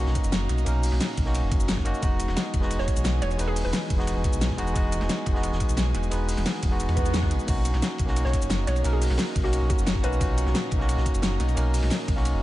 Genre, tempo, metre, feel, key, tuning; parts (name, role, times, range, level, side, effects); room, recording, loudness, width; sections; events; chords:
liquid drum and bass; 176 BPM; 4/4; straight; E lydian; A4 = 440 Hz
bell-like tine electric piano; accompaniment; 0.0-12.4 s; A#2 to B4; -31 LUFS; equal; ping-pong delay
airy breathy pad; sustained chords; 0.0-12.4 s; E3 to A#5; -36 LUFS; equal; chorus, vintage 12-bit sampler grit, sidechain pumping
sub bass with octave; bass; 0.0-12.4 s; E1 to E2; -25 LUFS; equal; tube saturation
crunchy breakbeat drum kit; drums; 0.1-12.3 s; hi-hat, ride cymbal, snare drum; -38 LUFS; equal; high-pass filter on cymbals, studio ambience, high-pass filter on hats, high-pass filter on snare, high-pass filter on room
electronic kick drum; drums; 0.2-12.2 s; -26 LUFS; equal; studio ambience
pop drum kit; drums; 0.2-12.3 s; cabasa, crash cymbal, hi-hat, snare drum; -30 LUFS; left 1 dB; studio ambience
hollow square pluck; melody; 2.8-4.0, 8.2-10.5 s; F#4 to C#5; -34 LUFS; equal; chorus, ping-pong delay
swell; sound effects; 6.9-7.5 s; -35 LUFS; right 4 dB
digital ambience; nothing above 10.7 kHz; -22 LUFS; side -16 dB against mid
0.0-12.4 A section
swell 6.9-7.5
0.0 Bmaj7; 2.0 Emaj7; 7.5 Bmaj7